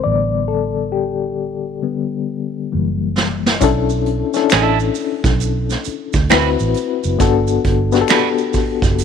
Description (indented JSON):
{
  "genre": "R&B, neo-soul",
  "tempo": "67 BPM",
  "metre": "4/4",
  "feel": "swing 64% on 16ths",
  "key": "B minor",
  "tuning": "A4 = 439 Hz",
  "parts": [
    { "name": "reed electric piano", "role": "accompaniment", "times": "0.0-9.0 s", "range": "D3 to D5", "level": "-18 LUFS", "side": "left 10 dB", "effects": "medium tremolo, low-pass filter" },
    { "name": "vintage muted fingered electric bass", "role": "bass", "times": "0.1-9.0 s", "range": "F#1 to D2", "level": "-20 LUFS", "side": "right 3 dB", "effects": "none" },
    { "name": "vintage brush drum kit", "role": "drums", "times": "3.2-9.0 s", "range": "finger snaps, hi-hat, kick drum, snare drum", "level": "-18 LUFS", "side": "right 2 dB", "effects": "none" },
    { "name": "maracas and finger snaps", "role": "percussion", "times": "3.6-9.0 s", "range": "none", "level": "-31 LUFS", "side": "right 4 dB", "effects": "none" },
    { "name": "electric guitar at the edge of break-up", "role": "second line", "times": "4.5-8.3 s", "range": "C4 to B4", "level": "-20 LUFS", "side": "right 16 dB", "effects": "none" }
  ],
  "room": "studio reverb",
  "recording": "1960s-style stereo with parts hard left and right",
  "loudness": "-15 LUFS",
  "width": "side -7 dB against mid",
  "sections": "0.0-3.6 A section; 3.6-9.0 B section",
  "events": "reed electric piano solo 0.0-3.6; drum fill 2.7-3.6",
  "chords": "0.0 A7sus4; 2.7 F#7b9; 3.6 Bm11; 6.3 D13; 7.2 Gmaj7"
}